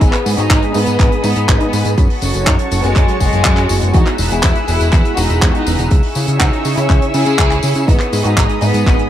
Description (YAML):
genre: italo disco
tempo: 122 BPM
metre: 4/4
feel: straight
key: unclear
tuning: A4 = 440 Hz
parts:
  - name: warm studio violin section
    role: melody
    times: 0.0-9.0 s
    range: G#3 to G#4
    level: -19 LUFS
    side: left 1 dB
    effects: digital delay, shimmer reverb
  - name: lush unison pad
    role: sustained chords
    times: 0.0-9.1 s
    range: F#4 to E6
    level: -22 LUFS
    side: equal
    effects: chorus, shimmer reverb
  - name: fat analog bass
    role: bass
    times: 0.0-9.0 s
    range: E1 to C#3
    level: -17 LUFS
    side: equal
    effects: tube saturation
  - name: damped 70s drum kit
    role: drums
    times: 0.0-9.1 s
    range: handclaps, hi-hat, tambourine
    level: -20 LUFS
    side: equal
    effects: none
  - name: electronic kick drum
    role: drums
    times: 0.0-9.0 s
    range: none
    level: -13 LUFS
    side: equal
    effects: none
  - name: mellow synth brass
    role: stabs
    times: 0.3-9.1 s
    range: G#2 to A5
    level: -22 LUFS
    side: right 1 dB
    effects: chorus, shimmer reverb
room: light reverb, small room ambience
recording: none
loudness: -11 LUFS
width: side -11 dB against mid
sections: 0.0-9.1 A section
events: none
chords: 0.0 G#m; 2.0 F#m; 3.9 Eadd9; 5.9 C#m; 7.9 G#m